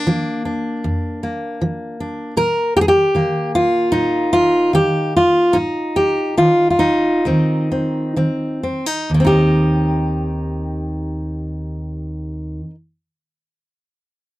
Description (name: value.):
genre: folk, solo fingerstyle acoustic guitar.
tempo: 63-78 BPM.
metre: 4/4.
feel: straight.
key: unclear.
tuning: A4 = 441 Hz.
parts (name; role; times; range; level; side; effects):
fingerpicked steel-string acoustic guitar; solo; 0.0-12.7 s; Eb2 to Bb4; -16 LUFS; equal; none.
room: light reverb.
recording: dry, close 1970s-style studio recording.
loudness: -15 LUFS.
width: side -17 dB against mid.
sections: 0.0-9.1 A section; 9.1-12.9 B section.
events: slowing down 2.4-9.1.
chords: 0.0 Bb; 2.4 Eb5/Bb; 5.5 Ab5; 7.2 Cm/Eb.